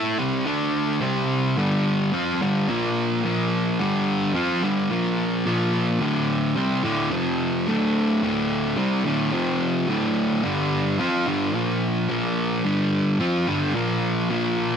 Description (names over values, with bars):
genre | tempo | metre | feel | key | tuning
rock | 108 BPM | 4/4 | straight | unclear | A4 = 440 Hz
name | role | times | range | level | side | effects
thick fuzz guitar | solo | 0.0-14.8 s | D2 to A4 | -20 LUFS | equal | distortion
room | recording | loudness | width
little or no reverb | dry, close 1970s-style studio recording | -20 LUFS | side -7 dB against mid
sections
0.0-14.8 A section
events
none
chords
0.5 D5; 1.0 C5; 1.6 G5; 2.7 Bb5; 3.8 G5; 4.9 Bb5; 6.0 D5; 7.1 F5; 7.7 D5; 9.3 F5; 9.9 D5; 10.4 G5; 11.6 Bb5; 12.7 G5; 13.8 Bb5